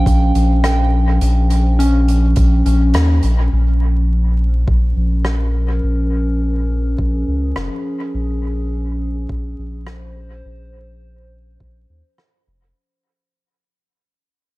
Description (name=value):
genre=ambient dub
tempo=104 BPM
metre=4/4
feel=straight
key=Bb dorian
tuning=A4 = 441 Hz
part: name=warbly tape-like pad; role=sustained chords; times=0.0-12.8 s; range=F3 to C5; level=-24 LUFS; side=equal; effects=chorus, built-in reverb
part: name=soft synth bell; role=arpeggios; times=0.0-4.0 s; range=Db4 to G5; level=-23 LUFS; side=equal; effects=chorus, tape echo
part: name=soft dub sub bass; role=bass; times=0.0-12.7 s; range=F1 to Eb2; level=-15 LUFS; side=equal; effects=none
part: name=electronic kick drum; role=drums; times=0.1-11.7 s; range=none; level=-19 LUFS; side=equal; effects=none
part: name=soft-mallet drum kit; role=drums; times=0.1-12.3 s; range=hi-hat, rim click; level=-27 LUFS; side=equal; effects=dub echo
room=small room ambience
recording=echo-heavy mix, vinyl crackle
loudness=-14 LUFS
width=side -20 dB against mid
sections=0.0-3.5 A section; 3.5-12.8 B section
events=band accent 2.9; fade-out 3.5-12.8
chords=0.0 Bbm7